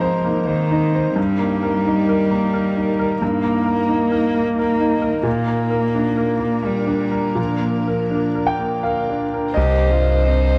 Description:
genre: neoclassical piano and strings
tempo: 81-89 BPM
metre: 3/4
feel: rubato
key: Eb major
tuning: A4 = 440 Hz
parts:
  - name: warm cello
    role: second line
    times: 0.0-10.6 s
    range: Eb3 to G4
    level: -24 LUFS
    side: equal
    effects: none
  - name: clear concert grand piano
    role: accompaniment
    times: 0.0-10.6 s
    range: C2 to G5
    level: -22 LUFS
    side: equal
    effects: none
  - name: granular cloud pad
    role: sustained chords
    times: 0.0-10.6 s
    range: Bb3 to Bb4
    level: -30 LUFS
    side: equal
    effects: built-in reverb
  - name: dark violin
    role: melody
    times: 9.6-10.6 s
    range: C5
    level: -25 LUFS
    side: equal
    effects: none
  - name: saturated sub bass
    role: bass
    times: 9.6-10.6 s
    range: C2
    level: -19 LUFS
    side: equal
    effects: none
room: light reverb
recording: worn, warbling old tape, cassette tape, warbly pitch drift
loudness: -19 LUFS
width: mono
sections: 0.0-9.6 A section; 9.6-10.6 B section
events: none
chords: 0.0 Abadd9; 1.2 Eb/G; 5.3 Bb; 9.6 Cm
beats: 0.48 | 1.17 1.85 2.53 | 3.21 3.89 4.57 | 5.25 5.94 6.65 | 7.38 8.11 8.84 | 9.56 10.25

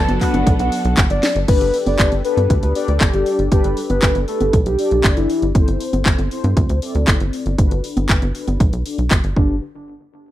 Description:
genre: italo disco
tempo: 118 BPM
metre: 4/4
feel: straight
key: G major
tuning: A4 = 438 Hz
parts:
  - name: soft octave-layered synth lead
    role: melody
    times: 0.0-5.5, 9.4-9.6 s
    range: D4 to A5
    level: -20 LUFS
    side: left 1 dB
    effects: chorus, phaser, tape echo
  - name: dark symphonic string section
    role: sustained chords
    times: 0.0-1.5 s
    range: F#3 to A4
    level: -25 LUFS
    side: right 1 dB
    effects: none
  - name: mellow synth brass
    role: stabs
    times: 0.0-9.6 s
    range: C4 to D5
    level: -25 LUFS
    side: left 4 dB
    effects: chorus
  - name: tight sequencer bass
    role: bass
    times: 0.0-9.6 s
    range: G1 to G2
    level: -19 LUFS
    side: equal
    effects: none
  - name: house drum kit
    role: drums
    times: 0.1-9.3 s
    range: congas, crash cymbal, handclaps, hi-hat, snare drum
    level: -22 LUFS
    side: equal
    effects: overdrive, small room reverb
  - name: electronic kick drum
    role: drums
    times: 0.2-9.5 s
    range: none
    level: -16 LUFS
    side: equal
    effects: overdrive, small room reverb
room: little or no reverb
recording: dry, close 1970s-style studio recording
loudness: -14 LUFS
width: side -14 dB against mid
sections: 0.0-1.5 A section; 1.5-9.6 B section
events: drum fill 1.2; band accent 1.2; filter sweep on analog polysynth 1.5-9.6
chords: 0.0 D6/G; 1.5 Gadd9; 5.5 Am/G; 7.6 D6/G; 9.4 Gadd9; 9.6 N.C.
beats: 0.47 0.97 | 1.48 1.99 2.50 3.01 | 3.52 4.03 4.53 5.04 | 5.55 6.06 6.57 7.08 | 7.58 8.09 8.60 9.11

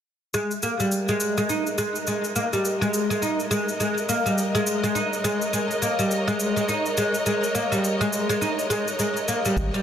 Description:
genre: organic downtempo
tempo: 104 BPM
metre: 4/4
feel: swing 59% on 16ths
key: unclear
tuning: A4 = 440 Hz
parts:
  - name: oud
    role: arpeggios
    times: 0.3-9.8 s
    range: G3 to D#4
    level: -23 LUFS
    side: equal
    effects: low-pass filter, digital delay
  - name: cabasa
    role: drums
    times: 0.3-9.8 s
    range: none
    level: -31 LUFS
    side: left 1 dB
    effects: overdrive
  - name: dark symphonic string section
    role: sustained chords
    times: 0.9-9.8 s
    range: A#4 to G5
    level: -29 LUFS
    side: equal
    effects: sidechain pumping, low-pass filter
  - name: round analog bass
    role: bass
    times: 9.6-9.7 s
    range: G#1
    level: -25 LUFS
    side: equal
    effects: none
  - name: electronic kick drum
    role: drums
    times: 9.6-9.7 s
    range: none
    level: -33 LUFS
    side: right 1 dB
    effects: none
room: moderate huge ambient reverb, RT60 7.7 s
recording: dense, heavily limited modern master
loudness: -22 LUFS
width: side -9 dB against mid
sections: 0.3-9.8 A section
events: filter sweep on string section 0.3-9.8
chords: 0.3 G#sus2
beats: | 0.34 0.92 1.49 2.07 | 2.65 3.22 3.80 4.38 | 4.95 5.53 6.11 6.68 | 7.26 7.84 8.42 8.99 | 9.57

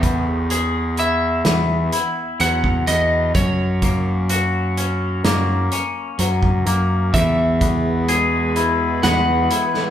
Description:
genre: post-rock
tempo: 63 BPM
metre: 4/4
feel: straight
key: E lydian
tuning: A4 = 440 Hz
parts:
  - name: twangy electric guitar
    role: arpeggios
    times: 0.0-9.9 s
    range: F#2 to G#4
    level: -22 LUFS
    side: left 4 dB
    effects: none
  - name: fuzz picked electric bass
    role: bass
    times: 0.0-9.5 s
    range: E2 to F#2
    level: -20 LUFS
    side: equal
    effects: overdrive
  - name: loose indie drum kit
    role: drums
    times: 0.0-9.9 s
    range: hi-hat, kick drum, snare drum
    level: -23 LUFS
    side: right 1 dB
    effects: none
  - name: electric slide guitar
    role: melody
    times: 1.0-9.9 s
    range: C#5 to F#5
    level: -21 LUFS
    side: equal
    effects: none
  - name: soft additive organ-like pad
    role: sustained chords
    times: 7.8-9.9 s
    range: E3 to B4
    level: -28 LUFS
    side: right 1 dB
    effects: ensemble chorus, built-in reverb
room: wet large studio reverb, RT60 1.1 s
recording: band playing live in one room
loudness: -16 LUFS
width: side -10 dB against mid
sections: 0.0-9.9 A section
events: none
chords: 0.0 Eadd9; 3.4 F#; 7.1 Eadd9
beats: 0.51 1.45 2.40 | 3.35 4.30 5.25 6.19 | 7.14 8.09 9.04

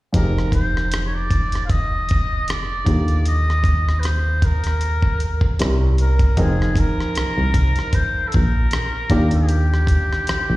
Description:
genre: R&B, neo-soul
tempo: 77 BPM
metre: 4/4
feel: swing 55% on 16ths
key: F dorian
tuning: A4 = 439 Hz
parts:
  - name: warm baby grand piano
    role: accompaniment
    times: 0.1-10.6 s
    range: C3 to G5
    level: -26 LUFS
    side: equal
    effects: slapback echo
  - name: solid FM bass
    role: bass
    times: 0.1-10.6 s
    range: F1 to Eb2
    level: -19 LUFS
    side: equal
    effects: none
  - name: dusty soul sampler-style drum kit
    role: drums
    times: 0.1-10.5 s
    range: hi-hat, kick drum, rim click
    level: -20 LUFS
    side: equal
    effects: none
  - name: trumpet with metal mute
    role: melody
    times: 0.2-10.6 s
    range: G4 to F5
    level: -25 LUFS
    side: equal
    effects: slapback echo, tape echo
room: studio ambience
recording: live gig heard through the venue's PA, recital hall reverb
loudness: -16 LUFS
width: side -18 dB against mid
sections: 0.1-6.4 A section; 6.4-10.6 B section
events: none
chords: 0.1 Fm11; 2.9 Ebmaj9; 5.6 C7b9; 6.4 Fm11; 9.1 Ebmaj9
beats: | 0.14 0.92 1.70 2.48 | 3.25 4.03 4.81 5.59 | 6.37 7.15 7.93 8.71 | 9.49 10.27

